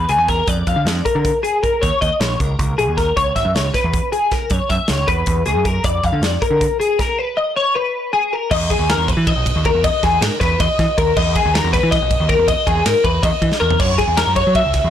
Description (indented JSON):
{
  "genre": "math rock and midwest emo",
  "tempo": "315 BPM (eighths)",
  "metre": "7/8",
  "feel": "straight",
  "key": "E lydian",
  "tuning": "A4 = 440 Hz",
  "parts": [
    { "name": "twelve-string electric guitar", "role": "arpeggios", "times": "0.0-14.9 s", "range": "G#4 to E#5", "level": "-17 LUFS", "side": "left 3 dB", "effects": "ensemble chorus, plate reverb" },
    { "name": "growling picked electric bass", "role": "bass", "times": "0.0-14.9 s", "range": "G#1 to F#3", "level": "-20 LUFS", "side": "right 1 dB", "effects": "overdrive" },
    { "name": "modern studio drum kit", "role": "drums", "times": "0.1-14.8 s", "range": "crash cymbal, hi-hat, kick drum, ride cymbal, snare drum, splash cymbal, toms", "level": "-20 LUFS", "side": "right 1 dB", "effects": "none" }
  ],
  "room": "light reverb",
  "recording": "blown-out, overdriven recording, overdrive",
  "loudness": "-14 LUFS",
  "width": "side -10 dB against mid",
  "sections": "0.0-8.5 A section; 8.5-14.9 B section",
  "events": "drum fill 13.5",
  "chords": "0.5 A#7/E#; 1.8 D#5; 3.2 C#m7; 4.5 F#7sus4; 5.8 A#7/E#; 7.2 G#madd9; 8.5 Emaj7; 13.8 F#7",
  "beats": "0.09 0.29 | 0.48 0.67 0.86 1.05 1.25 1.44 1.63 | 1.82 2.01 2.21 2.40 2.59 2.78 2.97 | 3.17 3.36 3.55 3.74 3.93 4.12 4.31 | 4.51 4.70 4.89 5.08 5.27 5.46 5.65 | 5.84 6.04 6.23 6.42 6.61 6.80 6.99 | 7.18 7.37 7.56 7.75 7.94 8.13 8.32 | 8.51 8.70 8.89 9.08 9.27 9.46 9.65 | 9.84 10.03 10.21 10.40 10.59 10.78 10.97 | 11.16 11.35 11.53 11.72 11.91 12.10 12.29 | 12.48 12.66 12.85 13.04 13.23 13.42 13.61 | 13.79 13.98 14.17 14.36 14.55 14.74"
}